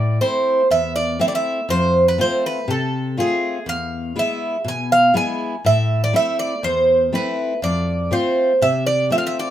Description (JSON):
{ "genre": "greek folk, Greek bouzouki band", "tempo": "121 BPM", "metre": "4/4", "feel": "straight", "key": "unclear", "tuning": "A4 = 440 Hz", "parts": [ { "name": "Greek bouzouki", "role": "melody", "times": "0.0-9.5 s", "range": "G#4 to G#5", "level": "-18 LUFS", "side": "right 2 dB", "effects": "none" }, { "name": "fingerpicked steel-string acoustic guitar", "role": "accompaniment", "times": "0.0-9.5 s", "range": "E2 to F4", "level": "-22 LUFS", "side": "left 2 dB", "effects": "none" } ], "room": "moderate studio reverb, RT60 0.5 s", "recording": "minimal, uncompressed stereo recording", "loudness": "-16 LUFS", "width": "side -11 dB against mid", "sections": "0.0-9.5 A section", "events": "none", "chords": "0.0 Am; 1.7 F; 3.7 E; 5.6 Am; 7.6 F" }